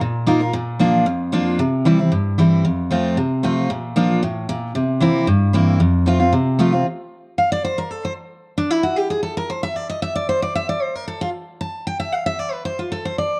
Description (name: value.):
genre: bluegrass.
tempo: 228 BPM.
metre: 4/4.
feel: straight.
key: F major.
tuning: A4 = 444 Hz.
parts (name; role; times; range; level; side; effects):
picked steel-string acoustic guitar; solo; 0.0-13.4 s; F2 to A5; -20 LUFS; equal; none.
room: moderate spring reverb, RT60 1.4 s, small room ambience.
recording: worn, warbling old tape, cassette tape, warbly pitch drift.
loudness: -20 LUFS.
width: mono.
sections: 0.0-6.9 A section; 6.9-13.4 B section.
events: steel-string acoustic guitar solo 6.9-13.4.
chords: 0.0 Ebsus2; 0.5 Bb; 1.6 C; 2.6 F; 3.7 Bb; 4.8 C7; 5.8 F; 6.9 N.C..